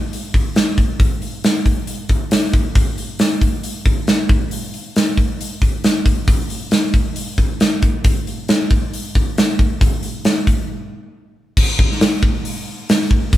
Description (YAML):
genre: rock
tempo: 136 BPM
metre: 4/4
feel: straight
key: none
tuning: none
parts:
  - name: big rock drum kit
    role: drums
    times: 0.1-13.4 s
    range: crash cymbal, hi-hat, kick drum, snare drum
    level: -15 LUFS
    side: equal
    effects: none
room: moderate small room reverb, RT60 0.5 s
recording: band playing live in one room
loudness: -15 LUFS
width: side -14 dB against mid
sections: 0.0-11.6 A section; 11.6-13.4 B section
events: break 10.7-11.6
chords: none